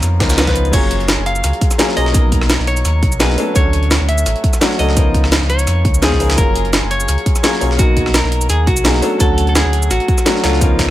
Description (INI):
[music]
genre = liquid drum and bass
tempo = 170 BPM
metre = 4/4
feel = swing 54% on 16ths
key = unclear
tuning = A4 = 439 Hz
[part]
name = clear concert grand piano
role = accompaniment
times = 0.0-10.9 s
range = E#3 to B4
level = -19 LUFS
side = left 2 dB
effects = tape echo
[part]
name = sub bass with octave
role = bass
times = 0.0-10.9 s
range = F#1 to E#2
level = -16 LUFS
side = equal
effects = none
[part]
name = breakbeat sampler-style drum kit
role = drums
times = 0.0-10.9 s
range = cabasa, crash cymbal, hi-hat, rim click, snare drum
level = -19 LUFS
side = equal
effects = none
[part]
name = electronic kick drum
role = drums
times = 0.2-10.9 s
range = none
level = -16 LUFS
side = equal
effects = none
[part]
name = jungle sampler-style drum kit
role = drums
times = 0.2-10.9 s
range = hi-hat, snare drum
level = -23 LUFS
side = right 1 dB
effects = high-pass filter on hats, high-pass filter on snare, high-pass filter on room
[part]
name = clean electric guitar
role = melody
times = 0.4-10.9 s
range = E#4 to E#5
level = -21 LUFS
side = equal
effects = ping-pong delay
[sound]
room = digital ambience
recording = none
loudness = -12 LUFS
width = side -14 dB against mid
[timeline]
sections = 0.0-10.9 A section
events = none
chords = 0.0 C#13; 0.7 F#maj9; 2.1 Bmaj7; 3.4 Dmaj7; 5.0 C#13; 6.4 F#maj9; 7.8 Bmaj7; 9.0 Dmaj7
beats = 0.03 0.38 | 0.73 1.08 1.44 1.79 | 2.14 2.50 2.85 3.20 | 3.56 3.91 4.26 4.62 | 4.97 5.32 5.67 6.03 | 6.38 6.73 7.08 7.44 | 7.79 8.14 8.50 8.85 | 9.20 9.56 9.91 10.26 | 10.62